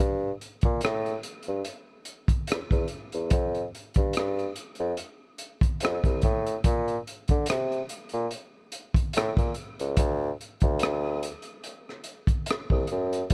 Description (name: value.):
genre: R&B, neo-soul.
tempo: 72 BPM.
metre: 4/4.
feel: swing 53% on 16ths.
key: G dorian.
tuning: A4 = 440 Hz.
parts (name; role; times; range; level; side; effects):
warm bassoon; bass; 0.0-13.3 s; C2 to D3; -30 LUFS; equal; none.
crunchy breakbeat drum kit; drums; 0.4-13.3 s; hi-hat, kick drum, rim click; -29 LUFS; equal; none.
room: little or no reverb.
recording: none.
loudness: -28 LUFS.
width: mono.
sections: 0.0-13.3 A section.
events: none.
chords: none.